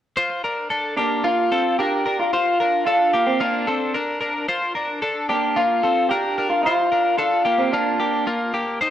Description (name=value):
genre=indie pop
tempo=111 BPM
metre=4/4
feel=straight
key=Bb major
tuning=A4 = 440 Hz
part: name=twelve-string electric guitar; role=arpeggios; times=0.2-8.9 s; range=Bb3 to C5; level=-22 LUFS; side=left 1 dB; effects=slapback echo
part: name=electric guitar through a small old amp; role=melody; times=1.0-8.2 s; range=C4 to G4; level=-20 LUFS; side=equal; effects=spring reverb, slapback echo
room=light reverb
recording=rough home demo mix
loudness=-18 LUFS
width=side -11 dB against mid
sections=0.2-8.9 A section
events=none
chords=0.2 Bb